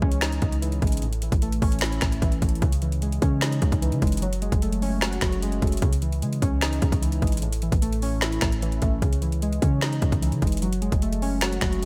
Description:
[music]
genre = hip hop, trap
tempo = 150 BPM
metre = 4/4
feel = half-time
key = C# minor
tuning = A4 = 440 Hz
[part]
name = warbly lo-fi synth keys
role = accompaniment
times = 0.0-11.9 s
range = A2 to F#4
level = -30 LUFS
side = equal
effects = chorus
[part]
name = warm 808-style bass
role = bass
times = 0.0-11.9 s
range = F#1 to C#3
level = -28 LUFS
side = equal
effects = none
[part]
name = trap drum kit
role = drums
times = 0.0-11.9 s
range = finger snaps, hi-hat, kick drum, snare drum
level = -27 LUFS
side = equal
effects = none
[sound]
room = little or no reverb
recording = none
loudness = -24 LUFS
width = mono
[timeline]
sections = 0.0-2.6 A section; 2.6-11.9 B section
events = none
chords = 0.0 C#madd9; 1.0 A; 2.6 C#madd9; 4.2 F#madd9; 5.8 C#madd9; 7.4 A; 9.0 C#madd9; 10.6 F#madd9

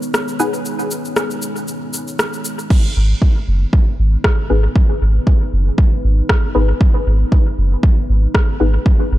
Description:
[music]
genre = dub techno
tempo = 117 BPM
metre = 4/4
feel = swing 55% on 16ths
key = G# minor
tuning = A4 = 441 Hz
[part]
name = deep dark ambient pad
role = sustained chords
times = 0.0-9.2 s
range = G#3 to C#5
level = -27 LUFS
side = equal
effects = chorus, built-in reverb, sidechain pumping
[part]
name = deep house drum kit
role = drums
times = 0.0-8.5 s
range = crash cymbal, rim click, shaker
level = -23 LUFS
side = equal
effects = overdrive, dub echo
[part]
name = filtered dub chord stab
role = stabs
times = 0.4-0.6, 4.5-8.8 s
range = B3 to B4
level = -23 LUFS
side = left 3 dB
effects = phaser, dub echo
[part]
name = electronic kick drum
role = drums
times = 2.7-9.0 s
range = none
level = -13 LUFS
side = equal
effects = overdrive
[part]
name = soft dub sub bass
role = bass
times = 3.0-9.2 s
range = F#1 to G#1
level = -14 LUFS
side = equal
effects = tube saturation, sidechain pumping
[sound]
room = digital ambience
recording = dry, gritty hardware recording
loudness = -13 LUFS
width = side -15 dB against mid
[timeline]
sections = 0.0-2.7 A section; 2.7-9.2 B section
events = none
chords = 0.0 G#m

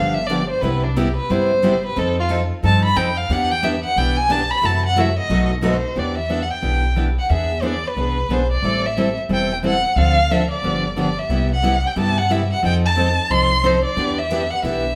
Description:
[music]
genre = acoustic string swing (jazz manouche)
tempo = 180 BPM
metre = 4/4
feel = swing 61% on 8ths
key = E minor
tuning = A4 = 439 Hz
[part]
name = warm violin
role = melody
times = 0.0-15.0 s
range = D4 to C6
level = -23 LUFS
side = equal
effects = none
[part]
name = picked steel-string acoustic guitar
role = accompaniment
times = 0.0-14.8 s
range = B2 to A4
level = -25 LUFS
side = equal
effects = none
[part]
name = picked steel-string acoustic guitar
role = accompaniment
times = 0.0-5.7, 11.3-14.8 s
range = B2 to B4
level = -32 LUFS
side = equal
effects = none
[part]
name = upright bass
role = bass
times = 0.0-15.0 s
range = E1 to G2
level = -24 LUFS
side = equal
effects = none
[sound]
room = wet large studio reverb, RT60 1.1 s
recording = band playing live in one room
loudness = -19 LUFS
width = mono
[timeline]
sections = 0.0-6.0 A section; 6.0-15.0 B section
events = violin solo 0.0-6.0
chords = 0.0 G7; 0.6 Cmaj7; 2.0 F9; 3.3 Em7; 4.6 F#m7b5; 5.3 B7; 6.0 Em7; 7.3 E7; 8.6 Am7; 10.0 Dm7; 10.6 G7; 11.3 Cmaj7; 12.6 F7; 14.0 Em7

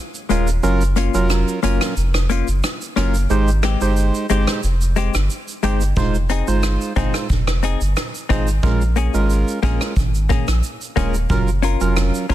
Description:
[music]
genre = dancehall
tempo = 90 BPM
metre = 4/4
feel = straight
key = F minor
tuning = A4 = 439 Hz
[part]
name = downlifter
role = sound effects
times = 0.1-0.6 s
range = none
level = -52 LUFS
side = right 1 dB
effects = none
[part]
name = soft brush drum kit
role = drums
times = 0.1-12.3 s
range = hi-hat, kick drum, rim click, shaker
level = -24 LUFS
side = right 1 dB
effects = none
[part]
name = percussive organ stab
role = accompaniment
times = 0.3-12.3 s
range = Gb3 to C5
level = -22 LUFS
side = right 4 dB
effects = chorus
[part]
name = semi-hollow electric guitar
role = arpeggios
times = 0.3-12.3 s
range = Ab3 to Bb4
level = -25 LUFS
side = left 10 dB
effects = none
[part]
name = sub bass with octave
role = bass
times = 0.3-12.3 s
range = Eb1 to Bb1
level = -18 LUFS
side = equal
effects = none
[sound]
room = small room reverb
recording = dense, heavily limited modern master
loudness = -16 LUFS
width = side -13 dB against mid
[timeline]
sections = 0.0-12.3 A section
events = break 0.0-6.0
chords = 0.0 Bbm7; 0.6 Gbmaj7; 3.3 Fm7; 8.6 Bbm7; 11.3 Gbmaj7

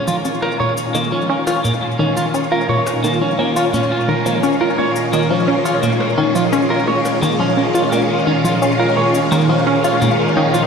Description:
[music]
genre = ambient, sequencer-driven space music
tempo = 86 BPM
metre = 4/4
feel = straight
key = Bb minor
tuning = A4 = 443 Hz
[part]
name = phased string machine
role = sustained chords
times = 0.0-10.7 s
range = Bb2 to F4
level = -18 LUFS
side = equal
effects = ensemble chorus, phaser, shimmer reverb
[part]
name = electric guitar at the edge of break-up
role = arpeggios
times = 0.0-10.6 s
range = Bb3 to Db5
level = -20 LUFS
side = right 1 dB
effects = auto-pan, ping-pong delay, shimmer reverb
[part]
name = tight sequenced synth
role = riff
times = 0.0-10.7 s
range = Bb2 to F4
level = -18 LUFS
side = equal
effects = chorus, ping-pong delay, shimmer reverb
[part]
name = shaker and percussion blips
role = percussion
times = 0.1-10.7 s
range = none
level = -32 LUFS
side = left 2 dB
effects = overdrive, ping-pong delay
[sound]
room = wet huge ambient reverb, RT60 8.2 s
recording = played on a big sound system in a bare room, stone room reverb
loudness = -14 LUFS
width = side -6 dB against mid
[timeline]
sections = 0.0-10.7 A section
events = fade-in on string machine 0.0-10.7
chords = 0.0 Bbm

